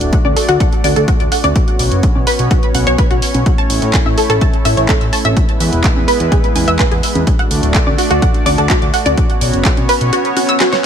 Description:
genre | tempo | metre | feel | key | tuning
progressive house | 126 BPM | 4/4 | straight | unclear | A4 = 438 Hz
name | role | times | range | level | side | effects
supersaw pad | sustained chords | 0.0-10.9 s | G#3 to D5 | -19 LUFS | equal | sidechain pumping, low-pass filter
fat analog bass | bass | 0.0-10.1 s | D1 to A2 | -17 LUFS | equal | sidechain pumping
pop drum kit | drums | 0.0-10.8 s | handclaps, hi-hat, snare drum | -20 LUFS | right 1 dB | sidechain pumping on hats, studio reverb
electronic kick drum | drums | 0.1-9.7 s | none | -14 LUFS | equal | studio reverb
analog pluck | arpeggios | 0.2-10.8 s | F#4 to E6 | -17 LUFS | equal | wide subtle chorus, cassette tape, sidechain pumping, digital delay
congas | percussion | 0.2-10.5 s | none | -24 LUFS | right 4 dB | sidechain pumping on perc, studio reverb
room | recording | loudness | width
little or no reverb | none | -11 LUFS | side -8 dB against mid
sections
0.0-10.9 A section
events
filter sweep on supersaw synth 0.0-10.9; drum fill 10.6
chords
0.0 D; 1.6 Bsus2; 3.5 A; 5.4 E; 7.3 D; 9.2 Bsus2

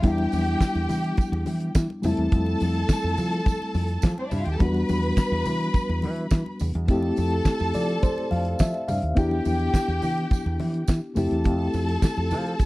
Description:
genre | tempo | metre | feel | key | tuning
disco | 105 BPM | 4/4 | straight | unclear | A4 = 438 Hz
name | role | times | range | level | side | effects
rich studio string section | second line | 0.0-12.7 s | C4 to B5 | -30 LUFS | equal | none
mellow reed electric piano | accompaniment | 0.0-12.7 s | F#3 to F5 | -27 LUFS | left 1 dB | fast tremolo
fingered electric bass | bass | 0.0-12.5 s | Eb2 to F3 | -26 LUFS | equal | none
damped 70s drum kit | drums | 0.0-12.7 s | hi-hat, kick drum, snare drum | -20 LUFS | equal | none
congas | percussion | 0.0-12.7 s | none | -36 LUFS | left 2 dB | none
tambourine | percussion | 0.0-12.7 s | none | -44 LUFS | right 12 dB | none
room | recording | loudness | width
studio reverb | dry, close 1970s-style studio recording | -22 LUFS | side -19 dB against mid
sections
0.0-12.7 A section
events
reed electric piano fill 7.5-9.2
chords
0.0 Em7; 2.0 Fmaj7; 4.6 Em7; 6.9 Fmaj7; 9.2 Em7; 11.2 Fmaj7

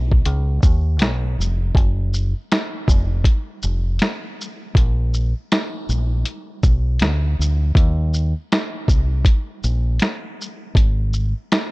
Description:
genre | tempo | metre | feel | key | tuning
lo-fi hip hop | 80 BPM | 4/4 | swing 63% on 16ths | unclear | A4 = 439 Hz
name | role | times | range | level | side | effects
deep dub fingered electric bass | bass | 0.0-11.3 s | F1 to Eb2 | -19 LUFS | equal | none
lo-fi sampler-style drum kit | drums | 0.1-11.7 s | finger snaps, hi-hat, kick drum, shaker, snare drum | -18 LUFS | equal | none
room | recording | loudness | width
digital ambience | none | -17 LUFS | side -23 dB against mid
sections
0.0-7.8 A section; 7.8-11.7 A section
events
none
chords
none

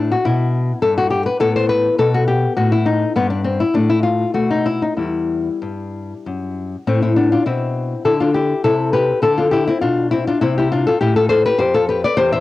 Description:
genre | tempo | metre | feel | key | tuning
classical, baroque-style dance for nylon-string guitar | 102 BPM | 3/4 | rubato | E minor, A minor from 6.9 s | A4 = 441 Hz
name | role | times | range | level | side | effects
nylon-string guitar | solo | 0.0-12.4 s | E2 to E5 | -15 LUFS | left 2 dB | none
room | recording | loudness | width
light reverb, small room ambience | home recording on cassette | -15 LUFS | side -16 dB against mid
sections
0.0-6.9 A section; 6.9-12.4 A section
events
none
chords
0.0 A5; 1.4 A7sus2; 3.1 N.C.; 4.3 B7; 5.0 Em; 6.9 Am; 8.6 Dm13; 10.4 C

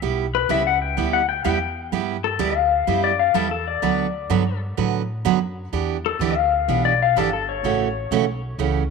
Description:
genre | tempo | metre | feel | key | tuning
country, western swing | 126 BPM | 4/4 | swing 68% on 8ths | unclear | A4 = 440 Hz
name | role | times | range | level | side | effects
picked steel-string acoustic guitar | accompaniment | 0.0-8.8 s | C#3 to B4 | -23 LUFS | right 13 dB | none
upright bass | bass | 0.0-8.9 s | G1 to A2 | -27 LUFS | equal | none
pedal steel guitar | second line | 0.3-8.4 s | A4 to G5 | -21 LUFS | left 11 dB | none
room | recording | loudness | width
wet spring reverb, RT60 2.3 s | 1960s-style stereo with parts hard left and right | -19 LUFS | side -4 dB against mid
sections
0.0-8.9 A section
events
pedal steel guitar solo 0.0-8.9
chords
0.0 G6; 3.8 D6; 5.7 Em7; 7.6 A6

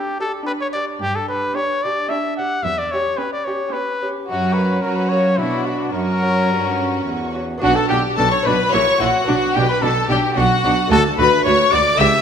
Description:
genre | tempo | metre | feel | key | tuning
classical, baroque-style concerto movement with solo episodes | 110 BPM | 3/4 | straight | B minor | A4 = 440 Hz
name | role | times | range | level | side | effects
clear trumpet | melody | 0.0-12.2 s | E4 to F#5 | -20 LUFS | left 2 dB | none
warm symphonic violin section | melody | 0.0-12.2 s | F#5 to E6 | -23 LUFS | left 4 dB | none
rich chamber violin section | second line | 0.0-12.1 s | F#4 to E5 | -22 LUFS | left 2 dB | none
lute | accompaniment | 0.0-12.2 s | D2 to G4 | -27 LUFS | right 1 dB | none
rich chamber viola section | accompaniment | 0.0-12.1 s | C#4 to G4 | -25 LUFS | right 1 dB | none
rich chamber cello section | bass | 1.0-12.1 s | C#2 to F#3 | -23 LUFS | right 2 dB | none
warm chamber double bass section | bass | 7.6-12.1 s | A#1 to D2 | -24 LUFS | right 5 dB | none
room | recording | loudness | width
wet recital hall reverb, RT60 1.4 s | faint mains hum | -16 LUFS | side -7 dB against mid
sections
0.0-7.6 A section; 7.6-12.2 B section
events
none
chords
0.0 G; 2.7 C#dim/E; 4.3 F#; 5.4 Bm; 5.9 F#; 7.6 Bm; 8.7 F#7/A#; 9.3 Bm; 10.9 D

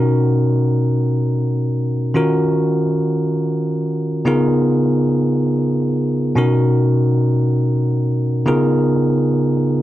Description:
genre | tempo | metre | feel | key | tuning
R&B | free time | none | none | unclear | A4 = 440 Hz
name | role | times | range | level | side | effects
bell-like tine electric piano | solo | 0.0-9.8 s | B2 to A#4 | -15 LUFS | equal | none
room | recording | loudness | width
light reverb | dark, warm production | -15 LUFS | side -14 dB against mid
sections
0.0-4.3 A section; 4.3-9.8 B section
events
none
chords
0.0 Bmaj9; 2.2 D#m9; 4.3 C#13; 6.4 Bmaj9; 8.5 C#13

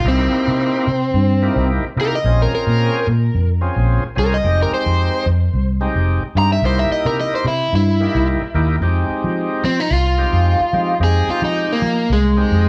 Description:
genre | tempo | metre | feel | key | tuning
straight-eighth soul blues | 110 BPM | 4/4 | swing 54% on 16ths | F minor | A4 = 440 Hz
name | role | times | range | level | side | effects
overdriven electric guitar | melody | 0.0-12.7 s | Ab3 to Bb5 | -21 LUFS | equal | analog delay
tonewheel organ | accompaniment | 0.0-12.7 s | Ab3 to Ab4 | -25 LUFS | equal | slow rotary speaker, overdrive
vintage muted fingered electric bass | bass | 0.0-12.7 s | F1 to F3 | -20 LUFS | equal | none
room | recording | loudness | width
moderate large studio reverb, RT60 0.8 s | band playing live in one room | -17 LUFS | mono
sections
0.0-8.8 A section; 8.8-12.7 B section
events
overdriven electric guitar solo 8.8-12.7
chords
0.1 C7#9; 2.2 Bbm7; 4.4 Fm7; 6.6 C7#9; 8.8 Fm7

